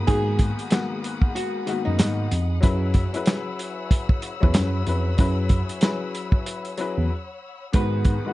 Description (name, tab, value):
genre	hip hop, boom-bap hip-hop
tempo	94 BPM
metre	4/4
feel	swing 60% on 16ths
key	unclear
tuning	A4 = 439 Hz
part	dark upright piano	accompaniment	0.0-8.3 s	G#2 to B4	-29 LUFS	left 4 dB	cassette tape, high-pass filter, low-pass filter
part	warm studio string section	sustained chords	0.0-8.3 s	G#4 to E6	-37 LUFS	left 3 dB	high-pass filter, low-pass filter
part	mellow tine electric piano	bass	0.0-8.2 s	E2 to G#2	-23 LUFS	equal	medium stereo tremolo
part	flamenco guitar	melody	0.1-2.6, 7.7-8.3 s	D#4 to B4	-30 LUFS	right 1 dB	high-pass filter, low-pass filter
part	warm soul drum kit	drums	0.1-8.2 s	handclaps, hi-hat, kick drum, snare drum	-20 LUFS	equal	none
room	little or no reverb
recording	dark, warm production, nothing above 10.6 kHz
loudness	-21 LUFS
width	side -17 dB against mid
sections	0.0-8.3 A section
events	break 7.1-7.7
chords	0.0 G#m7; 2.6 F#7sus4; 7.7 G#m7